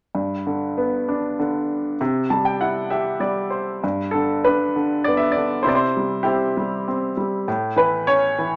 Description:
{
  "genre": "classical, lyrical solo piano",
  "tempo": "98 BPM",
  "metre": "3/4",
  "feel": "rubato",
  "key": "G major",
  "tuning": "A4 = 440 Hz",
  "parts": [
    { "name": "bright baby grand piano", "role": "solo", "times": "0.1-8.6 s", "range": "G2 to A5", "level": "-22 LUFS", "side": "equal", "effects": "none" }
  ],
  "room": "wet studio ambience, RT60 0.5 s",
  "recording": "none",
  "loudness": "-22 LUFS",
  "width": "mono",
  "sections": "0.1-3.8 A section; 3.8-8.6 B section",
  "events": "grand piano fill 2.0-3.8",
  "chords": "0.1 G; 2.0 C; 3.8 G; 5.7 C; 7.5 A"
}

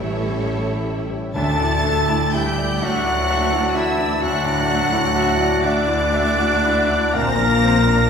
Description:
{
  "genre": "cinematic",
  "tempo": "37-43 BPM (dotted quarters)",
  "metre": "6/8",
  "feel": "rubato",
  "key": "D major",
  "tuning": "A4 = 440 Hz",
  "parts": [
    { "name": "rich studio violin section", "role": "melody", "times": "0.0-8.1 s", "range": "E5 to Bb6", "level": "-27 LUFS", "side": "equal", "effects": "none" },
    { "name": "rich studio violin section", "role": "second line", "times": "0.0-8.1 s", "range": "A4 to Bb5", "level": "-28 LUFS", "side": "equal", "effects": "none" },
    { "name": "clear baby grand piano", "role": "accompaniment", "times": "0.0-8.1 s", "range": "D2 to E5", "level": "-25 LUFS", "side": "equal", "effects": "none" },
    { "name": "clear studio viola section", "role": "accompaniment", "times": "0.0-8.1 s", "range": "G3 to E5", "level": "-28 LUFS", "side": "right 1 dB", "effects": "none" },
    { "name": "concert harp", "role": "arpeggios", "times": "0.0-8.1 s", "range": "A2 to F#5", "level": "-29 LUFS", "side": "left 1 dB", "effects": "none" },
    { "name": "rich studio cello section", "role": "bass", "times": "0.0-8.1 s", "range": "D2 to Bb2", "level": "-25 LUFS", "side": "right 1 dB", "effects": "none" },
    { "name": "rich studio double bass section", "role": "bass", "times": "0.0-8.1 s", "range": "A1 to D2", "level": "-27 LUFS", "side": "right 2 dB", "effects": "none" },
    { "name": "silver concert flute", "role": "second line", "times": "1.3-7.8 s", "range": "D5 to Bb5", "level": "-25 LUFS", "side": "left 1 dB", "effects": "none" },
    { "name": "warm French horn section", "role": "sustained chords", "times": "1.3-8.1 s", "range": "D3 to Bb3", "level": "-26 LUFS", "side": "left 4 dB", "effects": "none" },
    { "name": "timpani", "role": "percussion", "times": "1.3-2.8 s", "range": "D3", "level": "-29 LUFS", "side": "right 2 dB", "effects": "none" },
    { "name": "clear clarinet", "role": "second line", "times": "1.4-8.1 s", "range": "D4 to Bb4", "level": "-25 LUFS", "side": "equal", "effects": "none" },
    { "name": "warm oboe", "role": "second line", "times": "2.8-8.1 s", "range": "F5 to A5", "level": "-26 LUFS", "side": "left 3 dB", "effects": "none" }
  ],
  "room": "wet recital hall reverb, RT60 1.3 s",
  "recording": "recorded in a church or concert hall",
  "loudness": "-16 LUFS",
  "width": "side -6 dB against mid",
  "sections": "0.0-1.4 A section; 1.4-8.1 B section",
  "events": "none",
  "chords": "0.0 A7; 1.4 Dadd9; 7.1 Bbadd9"
}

